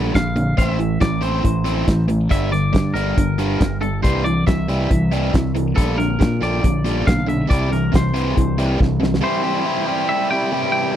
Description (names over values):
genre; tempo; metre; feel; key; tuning
indie rock; 139 BPM; 4/4; straight; unclear; A4 = 440 Hz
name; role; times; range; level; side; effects
biting overdriven guitar; riff; 0.0-11.0 s; G2 to G4; -20 LUFS; equal; none
growling fingered electric bass; bass; 0.0-9.2 s; G1 to Bb2; -22 LUFS; equal; overdrive
loose indie drum kit; drums; 0.1-9.2 s; hi-hat, kick drum, snare drum; -17 LUFS; equal; none
twangy electric guitar; melody; 0.2-11.0 s; A4 to G5; -26 LUFS; left 1 dB; slapback echo
room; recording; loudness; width
little or no reverb; dry, close 1970s-style studio recording; -16 LUFS; side -10 dB against mid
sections
0.0-9.2 A section; 9.2-11.0 B section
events
drum fill 8.8-9.2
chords
0.0 Gm/Bb; 0.6 Am; 2.3 Gm; 4.0 C; 5.8 Gm/Bb; 7.5 C